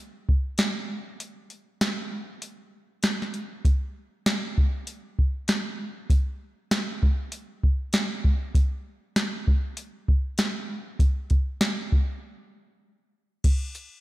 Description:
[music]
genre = hip hop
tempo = 98 BPM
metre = 4/4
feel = swing 60% on 16ths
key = none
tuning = none
[part]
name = soft vintage rhythm box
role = drums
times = 0.3-13.9 s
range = crash cymbal, hi-hat, kick drum, shaker, snare drum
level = -23 LUFS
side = equal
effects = none
[sound]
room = moderate echo chamber reverb, RT60 1.9 s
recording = echo-heavy mix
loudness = -24 LUFS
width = side -18 dB against mid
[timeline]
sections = 0.0-13.4 A section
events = break 1.2-3.6, 12.2-13.4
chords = none

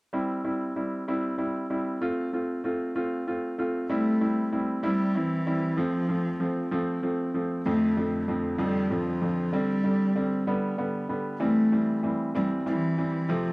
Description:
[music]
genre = pop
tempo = 64 BPM (dotted quarters)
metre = 6/8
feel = straight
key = C major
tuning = A4 = 438 Hz
[part]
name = bright upright piano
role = accompaniment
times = 0.1-13.5 s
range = F2 to F4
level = -27 LUFS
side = equal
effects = cassette tape
[part]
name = warm cello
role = melody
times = 3.9-13.5 s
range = E3 to A3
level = -26 LUFS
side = equal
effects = cassette tape, tape echo
[sound]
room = wet booth ambience, RT60 0.2 s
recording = home recording on cassette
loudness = -25 LUFS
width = side -26 dB against mid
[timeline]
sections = 0.1-3.9 A section; 3.9-13.5 B section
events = none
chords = 0.1 C; 2.0 F; 3.9 C; 5.8 F; 7.7 Dm7/F; 9.5 Gsus4; 10.5 G; 11.4 C

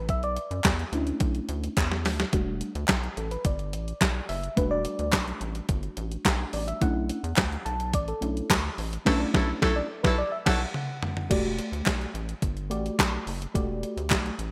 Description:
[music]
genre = early-eighties boogie funk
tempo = 107 BPM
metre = 4/4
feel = straight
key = E dorian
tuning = A4 = 440 Hz
[part]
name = mellow FM electric piano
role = accompaniment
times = 0.0-14.4 s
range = G3 to A5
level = -34 LUFS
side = equal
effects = chorus, phaser
[part]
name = rubbery square bass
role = bass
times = 0.0-14.5 s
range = E1 to F#2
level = -34 LUFS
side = equal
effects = none
[part]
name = clean 12-bit digital drum machine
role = drums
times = 0.1-14.5 s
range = crash cymbal, handclaps, hi-hat, kick drum, snare drum, toms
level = -29 LUFS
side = equal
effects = overdrive
[part]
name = group handclap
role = percussion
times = 0.6-14.2 s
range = none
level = -35 LUFS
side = equal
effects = none
[part]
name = warm horn section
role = second line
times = 9.1-10.6 s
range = F#3 to A4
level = -34 LUFS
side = equal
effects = none
[sound]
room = light reverb, digital ambience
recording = bright 1980s-style digital production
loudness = -28 LUFS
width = mono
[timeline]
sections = 0.0-11.3 A section; 11.3-14.5 B section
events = FM electric piano solo 0.0-11.3; drum fill 1.8-2.3, 10.2-11.3; band accent 9.1-11.3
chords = 0.0 Bm11; 2.3 Em11; 6.8 Bm11; 11.3 Em11

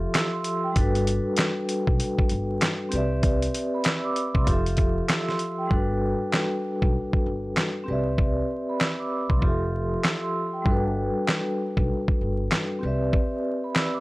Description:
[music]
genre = hip hop, boom-bap hip-hop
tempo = 97 BPM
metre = 4/4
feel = swing 61% on 16ths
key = G major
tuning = A4 = 440 Hz
[part]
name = vibraphone with medium mallets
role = accompaniment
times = 0.0-14.0 s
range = F3 to E6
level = -26 LUFS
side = equal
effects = high-pass filter, low-pass filter
[part]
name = upright bass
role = bass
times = 0.0-13.1 s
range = F1 to C2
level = -28 LUFS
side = equal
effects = tube saturation
[part]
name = dusty soul sampler-style drum kit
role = drums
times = 0.1-13.9 s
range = handclaps, hi-hat, kick drum, snare drum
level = -24 LUFS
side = equal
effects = none
[sound]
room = studio ambience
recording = dry, gritty hardware recording, vinyl crackle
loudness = -22 LUFS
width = side -20 dB against mid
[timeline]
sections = 0.0-5.7 A section; 5.7-14.0 B section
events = hi-hats muted 5.7-14.0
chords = 0.0 Fmaj9; 0.8 Gmaj9; 2.9 Cmaj9; 4.5 Fmaj9; 5.7 Gmaj9; 7.9 Cmaj9; 9.4 Fmaj9; 10.7 Gmaj9; 12.8 Cmaj9

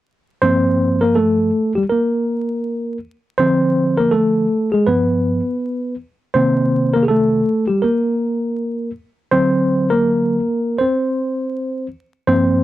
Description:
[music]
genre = hip hop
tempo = 81 BPM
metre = 4/4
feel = swing 61% on 16ths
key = unclear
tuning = A4 = 440 Hz
[part]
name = mellow tine electric piano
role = solo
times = 0.4-12.6 s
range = G2 to C5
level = -15 LUFS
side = equal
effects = medium stereo tremolo
[sound]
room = light reverb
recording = dry, close 1970s-style studio recording, vinyl crackle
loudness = -15 LUFS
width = side -14 dB against mid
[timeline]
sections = 0.4-12.6 A section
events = tine electric piano solo 0.4-12.6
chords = 0.4 Gm9; 3.4 Dm7b5; 4.9 G7; 6.4 Cm7; 9.3 D7b13

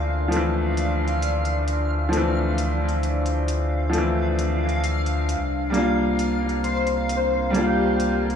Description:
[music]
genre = future garage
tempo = 133 BPM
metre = 4/4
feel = swing 66% on 16ths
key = D minor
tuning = A4 = 440 Hz
[part]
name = bright upright piano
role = accompaniment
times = 0.0-8.4 s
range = E3 to F4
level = -24 LUFS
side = equal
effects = tape echo
[part]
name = deep dark ambient pad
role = sustained chords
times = 0.0-8.4 s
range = C5 to C6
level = -30 LUFS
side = left 2 dB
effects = chorus, built-in reverb
[part]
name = soft dub sub bass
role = bass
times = 0.0-8.4 s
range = C2 to D2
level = -25 LUFS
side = left 1 dB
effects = tube saturation
[part]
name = backwards swelling texture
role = texture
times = 0.0-8.4 s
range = F5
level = -31 LUFS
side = right 1 dB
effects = built-in reverb
[part]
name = electronic hi-hat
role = drums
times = 0.3-8.4 s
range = none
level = -38 LUFS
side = left 1 dB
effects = none
[part]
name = airy dreamy lead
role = melody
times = 6.6-8.3 s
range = G4 to C5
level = -24 LUFS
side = left 4 dB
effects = chorus, phaser, tape echo
[sound]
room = moderate huge ambient reverb, RT60 6.5 s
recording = cassette tape, studio reverb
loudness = -20 LUFS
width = side -8 dB against mid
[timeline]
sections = 0.0-8.4 A section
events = none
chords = 0.0 Dm7; 5.4 C7sus4

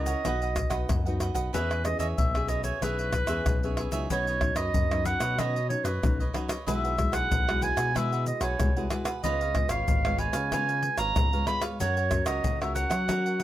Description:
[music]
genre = samba and choro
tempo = 94 BPM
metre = 4/4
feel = straight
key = E major, B major from 4.1 s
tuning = A4 = 440 Hz
[part]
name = warm clarinet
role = melody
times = 0.0-13.4 s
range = B4 to B5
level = -29 LUFS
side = right 2 dB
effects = none
[part]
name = cavaquinho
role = accompaniment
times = 0.0-13.4 s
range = E4 to F#5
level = -36 LUFS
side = right 5 dB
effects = none
[part]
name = nylon-string guitar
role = accompaniment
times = 0.0-13.4 s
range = F#2 to A#4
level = -35 LUFS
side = left 3 dB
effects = none
[part]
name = smooth gliding synth bass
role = bass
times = 0.0-13.4 s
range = G#1 to F#3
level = -31 LUFS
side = equal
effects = none
[part]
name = tube shaker, pandeiro, surdo and tamborim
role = percussion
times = 0.1-13.4 s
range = none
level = -29 LUFS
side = left 1 dB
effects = none
[sound]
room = little or no reverb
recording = close, detailed microphones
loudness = -25 LUFS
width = side -13 dB against mid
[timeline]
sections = 0.0-4.1 A section; 4.1-13.4 B section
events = none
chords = 0.3 B; 1.5 E6; 4.1 Badd9; 6.7 Eadd9/B; 9.2 C#7; 11.8 F#

